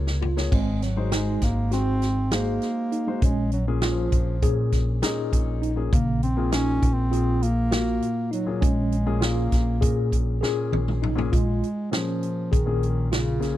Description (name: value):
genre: progressive instrumental, band music in an uneven meter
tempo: 200 BPM (eighths)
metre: 9/8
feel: straight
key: Bb minor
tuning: A4 = 440 Hz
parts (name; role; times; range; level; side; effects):
- dark concert grand piano; accompaniment; 0.0-13.6 s; Bb2 to Db5; -30 LUFS; left 6 dB; none
- hollow-body short-scale fingered electric bass; bass; 0.0-13.6 s; Ab1 to Bb2; -25 LUFS; equal; none
- swinging big-band drum kit; drums; 0.1-13.6 s; crash cymbal, hi-hat, kick drum, snare drum, toms; -25 LUFS; equal; none
- mellow tine electric piano; arpeggios; 0.2-13.5 s; Db3 to Ab4; -30 LUFS; equal; medium stereo tremolo, tape echo
- mellow bass clarinet; melody; 0.5-13.6 s; Db3 to Db4; -27 LUFS; right 1 dB; none
room: small room ambience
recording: dry, close 1970s-style studio recording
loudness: -21 LUFS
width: side -14 dB against mid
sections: 0.5-11.3 A section; 11.3-13.6 B section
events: drum fill 0.0-0.5, 10.4-11.3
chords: 0.0 Bbm7; 0.5 Ab7; 3.2 Bbm7; 5.9 Gbmaj7/Bb; 8.6 Bbm7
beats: 0.21 | 0.52 0.82 1.12 1.42 1.72 2.02 2.32 2.62 2.92 | 3.22 3.52 3.82 4.12 4.42 4.72 5.02 5.32 5.62 | 5.92 6.22 6.52 6.82 7.12 7.42 7.72 8.02 8.32 | 8.62 8.92 9.22 9.52 9.82 10.12 10.42 10.72 11.02 | 11.32 11.62 11.92 12.22 12.52 12.82 13.12 13.42